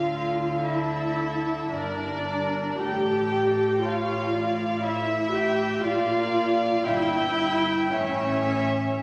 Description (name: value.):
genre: classical, slow romantic movement for string orchestra.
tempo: 50-60 BPM.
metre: 3/4.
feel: rubato.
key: unclear.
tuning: A4 = 435 Hz.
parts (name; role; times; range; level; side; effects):
warm symphonic violin section; melody; 0.0-9.0 s; C#5 to G5; -33 LUFS; equal; none.
dark symphonic viola section; accompaniment; 0.0-9.0 s; C#4 to G4; -28 LUFS; equal; none.
dark studio double bass section; bass; 0.0-9.0 s; G1 to D2; -40 LUFS; equal; none.
warm symphonic cello section; bass; 0.0-9.0 s; G2 to D3; -35 LUFS; equal; none.
warm symphonic violin section; second line; 0.7-9.0 s; A4 to G5; -33 LUFS; equal; none.
room: wet concert hall reverb, RT60 2.3 s.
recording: none.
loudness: -25 LUFS.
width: mono.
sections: 0.0-9.0 A section.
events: none.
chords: 0.0 Dm; 1.7 Gm; 2.8 A5; 5.8 Bb; 6.9 Em/G; 7.9 A.